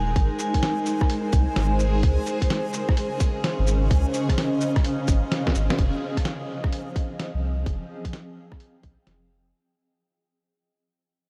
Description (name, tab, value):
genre	future garage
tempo	128 BPM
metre	4/4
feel	swing 64% on 16ths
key	F minor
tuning	A4 = 440 Hz
part	vibraphone with hard mallets	melody	0.0-1.1 s	Ab5	-36 LUFS	equal	analog delay
part	granular cloud pad	sustained chords	0.0-9.5 s	Db3 to Ab5	-30 LUFS	equal	built-in reverb, sidechain pumping
part	warm sub bass	bass	0.0-9.5 s	Eb1 to Db2	-25 LUFS	equal	tube saturation, sidechain pumping
part	backwards swelling texture	texture	0.0-5.8 s	Ab4	-40 LUFS	equal	built-in reverb
part	electronic kick drum	drums	0.2-9.0 s	none	-25 LUFS	equal	small room ambience
part	lo-fi sampler-style drum kit	drums	0.2-9.2 s	cabasa, hi-hat, rim click, snare drum	-33 LUFS	equal	small room ambience
room	moderate huge ambient reverb, RT60 6.9 s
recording	dreamy mix soaked in reverb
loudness	-24 LUFS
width	mono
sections	0.0-5.8 A section; 5.8-9.5 B section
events	drum fill 5.4-5.8; fade-out 5.8-9.5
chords	0.0 Ab; 2.0 Dbmaj7; 5.8 Fm7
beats	| 0.16 0.63 1.10 1.56 | 2.03 2.50 2.97 3.44 | 3.91 4.38 4.85 5.32 | 5.78 6.25 6.72 7.19 | 7.66 8.13 8.60 9.06